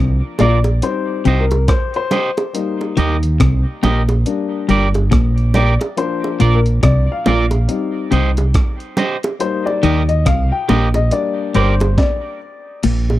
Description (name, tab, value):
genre	roots reggae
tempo	70 BPM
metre	4/4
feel	swing 60% on 16ths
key	unclear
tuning	A4 = 438 Hz
part	clean electric guitar	riff	0.0-13.1 s	G2 to Eb3	-18 LUFS	left 4 dB	none
part	dark upright piano	stabs	0.0-12.8 s	F3 to G5	-21 LUFS	left 5 dB	none
part	fingered electric bass	bass	0.0-13.2 s	G1 to Eb2	-15 LUFS	right 1 dB	none
part	electric guitar at the edge of break-up	accompaniment	0.4-11.7 s	F4 to Eb5	-23 LUFS	right 4 dB	dub echo
part	breakbeat sampler-style drum kit	drums	0.4-13.1 s	crash cymbal, hi-hat, kick drum, rim click, snare drum	-18 LUFS	right 1 dB	none
part	bongos	percussion	0.4-13.2 s	none	-21 LUFS	right 3 dB	none
room	little or no reverb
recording	dry, close 1970s-style studio recording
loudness	-14 LUFS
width	side -15 dB against mid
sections	0.0-12.8 A section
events	upright piano solo 0.0-12.8; stop 12.0-12.8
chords	0.0 Bb; 0.8 Cm; 2.5 Eb; 4.3 Gm; 6.0 Bb; 7.7 Cm; 9.4 Eb; 11.1 Gm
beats	0.82 1.68 | 2.54 3.40 4.25 5.11 | 5.97 6.83 7.69 8.54 | 9.40 10.26 11.12 11.98 | 12.84